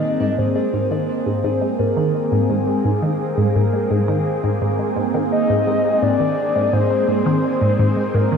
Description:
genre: ambient, sequencer-driven space music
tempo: 85 BPM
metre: 4/4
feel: straight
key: Ab major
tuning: A4 = 440 Hz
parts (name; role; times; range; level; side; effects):
- soft octave-layered synth lead; melody; 0.0-8.4 s; Ab4 to Eb5; -22 LUFS; left 1 dB; chorus, shimmer reverb, tape echo
- phased analog pad; sustained chords; 0.0-8.4 s; Bb3 to Ab4; -22 LUFS; equal; phaser, chorus, shimmer reverb
- wind-like tuned noise texture; texture; 1.7-8.4 s; Ab4 to G5; -40 LUFS; left 1 dB; none
- resonant blip pluck; riff; 0.2-8.4 s; Ab2 to Ab3; -20 LUFS; equal; phaser, tape echo
room: wet concert hall reverb, RT60 2.0 s, digital ambience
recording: dark, warm production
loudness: -16 LUFS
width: side -6 dB against mid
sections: 0.0-8.4 A section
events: none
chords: 0.0 Abadd9

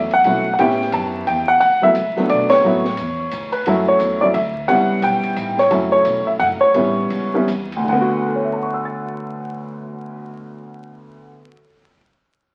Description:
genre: jazz piano trio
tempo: 150-176 BPM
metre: 3/4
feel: swing 62% on 8ths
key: D major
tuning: A4 = 440 Hz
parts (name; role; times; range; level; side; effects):
- warm baby grand piano; melody; 0.0-12.0 s; D2 to A6; -18 LUFS; equal; none
- upright bass; bass; 0.0-11.3 s; E1 to B2; -35 LUFS; equal; none
- open jazz drum kit; drums; 0.1-10.2 s; crash cymbal, cymbal swell, hi-hat, kick drum, ride cymbal, snare drum; -35 LUFS; equal; none
room: wet studio reverb, RT60 0.9 s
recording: very old 78 rpm record, vinyl crackle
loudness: -18 LUFS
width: mono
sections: 0.0-3.7 A section; 3.7-7.9 B section; 7.9-10.3 C section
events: band accent 2.5; slowing down 5.7-7.9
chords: 0.0 F#m7; 0.6 A9; 1.6 D6; 3.7 F#m7; 4.7 A7; 5.7 F#m7; 6.7 A7; 7.9 D6

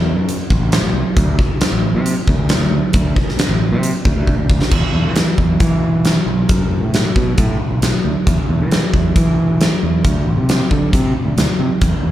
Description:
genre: classic rock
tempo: 135 BPM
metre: 4/4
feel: straight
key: unclear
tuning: A4 = 440 Hz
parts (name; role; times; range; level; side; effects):
- growling fingered electric bass; bass; 0.0-12.1 s; A1 to E3; -17 LUFS; equal; overdrive
- huge arena drum kit; drums; 0.3-11.9 s; crash cymbal, hi-hat, kick drum, snare drum; -15 LUFS; equal; none
room: light reverb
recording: live gig heard through the venue's PA, club reverb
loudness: -13 LUFS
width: side -13 dB against mid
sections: 0.0-4.7 A section; 4.7-12.1 B section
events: drum fill 4.3-4.7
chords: none

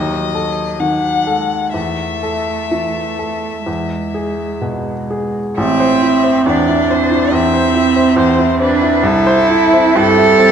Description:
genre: classical, slow romantic movement for piano trio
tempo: 61-72 BPM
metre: 4/4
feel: rubato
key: A minor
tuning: A4 = 439 Hz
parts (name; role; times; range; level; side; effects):
- rich violin; melody; 0.0-10.5 s; G4 to F#5; -20 LUFS; left 7 dB; none
- rich cello; second line; 0.0-10.5 s; F#3 to A4; -15 LUFS; right 4 dB; none
- clear baby grand piano; accompaniment; 0.0-10.5 s; A1 to C5; -17 LUFS; left 1 dB; none
room: wet recital hall reverb, RT60 1.5 s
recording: dark, warm production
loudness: -12 LUFS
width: side -8 dB against mid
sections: 0.0-5.6 A section; 5.6-10.5 A section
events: none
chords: 0.0 D#dim; 1.7 A5/E; 3.7 E; 5.6 Am; 9.0 C

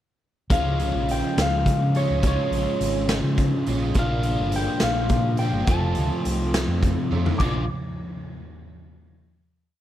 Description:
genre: indie rock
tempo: 70 BPM (dotted quarters)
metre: 6/8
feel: straight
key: unclear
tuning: A4 = 440 Hz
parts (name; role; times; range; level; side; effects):
- electric guitar through a small old amp; melody; 0.5-7.7 s; Db5 to D6; -28 LUFS; left 1 dB; spring reverb, slapback echo
- overdriven electric guitar; riff; 0.5-7.6 s; F2 to F4; -28 LUFS; left 6 dB; phaser
- overdriven electric guitar; riff; 0.5-7.6 s; F2 to F4; -30 LUFS; right 7 dB; ensemble chorus, slapback echo
- fingered electric bass; bass; 0.5-7.7 s; F1 to Db3; -25 LUFS; equal; none
- raw garage drum kit; drums; 0.5-7.5 s; crash cymbal, hi-hat, kick drum, snare drum, toms; -26 LUFS; equal; none
room: little or no reverb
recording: none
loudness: -20 LUFS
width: side -12 dB against mid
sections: 0.5-7.4 pre-chorus; 7.4-9.1 final chord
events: drum fill 7.1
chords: 0.5 Db6; 4.0 Bb6; 5.7 F; 7.4 Bb

